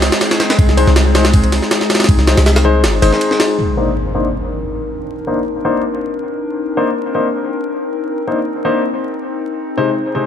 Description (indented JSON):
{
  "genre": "drum and bass, jungle",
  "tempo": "160 BPM",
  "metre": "4/4",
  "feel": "swing 54% on 16ths",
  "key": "C minor",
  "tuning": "A4 = 445 Hz",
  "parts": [
    { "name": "warbly tape-like pad", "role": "sustained chords", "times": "0.0-10.3 s", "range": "Ab3 to C5", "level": "-19 LUFS", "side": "left 2 dB", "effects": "chorus, built-in reverb" },
    { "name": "warm 808-style bass", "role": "bass", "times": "0.0-3.1 s", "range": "G1 to C2", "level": "-13 LUFS", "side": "equal", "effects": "tube saturation" },
    { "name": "jungle sampler-style drum kit", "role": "drums", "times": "0.0-3.5 s", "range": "kick drum, ride cymbal, snare drum", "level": "-14 LUFS", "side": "equal", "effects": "none" },
    { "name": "dark grand piano", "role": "stabs", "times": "0.8-10.3 s", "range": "C3 to C5", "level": "-18 LUFS", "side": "left 3 dB", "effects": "low-pass filter, dub echo" },
    { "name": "impact", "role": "sound effects", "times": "3.6-5.1 s", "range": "none", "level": "-23 LUFS", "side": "equal", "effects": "none" }
  ],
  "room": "light reverb, digital ambience",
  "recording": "vinyl crackle",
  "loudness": "-13 LUFS",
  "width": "side -9 dB against mid",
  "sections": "0.0-3.6 A section; 3.6-10.3 B section",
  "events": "drop 0.0-3.6; break 2.8-3.6; impact 3.6-5.1; filter sweep on grand piano 3.6-10.3",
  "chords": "0.0 Ab/C; 3.6 Cm9; 9.6 Ab/C"
}